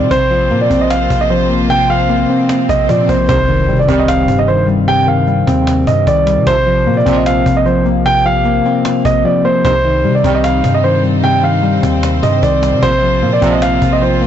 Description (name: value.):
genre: hip hop, trap.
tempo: 151 BPM.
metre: 4/4.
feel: half-time.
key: C minor.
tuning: A4 = 440 Hz.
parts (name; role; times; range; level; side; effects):
dark baby grand piano; melody; 0.0-14.2 s; C5 to G5; -14 LUFS; right 3 dB; low-pass filter, tape echo.
soft electric-piano-like synth keys; accompaniment; 0.0-14.3 s; C3 to C4; -14 LUFS; left 3 dB; chorus, low-pass filter.
warm chamber string section; sustained chords; 0.0-3.3, 9.6-14.3 s; G3 to C5; -23 LUFS; equal; none.
long sustained 808-style bass; bass; 0.0-14.3 s; Bb1 to C3; -18 LUFS; equal; none.
cajon; drums; 0.1-14.3 s; none; -24 LUFS; equal; vintage 12-bit sampler grit.
swell and impact; sound effects; 2.1-4.9 s; none; -24 LUFS; right 1 dB; none.
mellow brass ensemble; stabs; 3.3-13.8 s; G2 to G3; -22 LUFS; right 5 dB; none.
room: light reverb, small room ambience.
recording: blown-out, overdriven recording, overdrive, nothing above 7.9 kHz.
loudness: -10 LUFS.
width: side -10 dB against mid.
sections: 0.0-3.3 A section; 3.3-14.3 B section.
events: swell 2.1-3.3; impact 3.3-4.9; silent gap 9.2-9.6.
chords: 0.1 Bbsus2; 3.3 Cm; 6.5 Bbsus2; 9.6 Cm; 12.8 Bbsus2.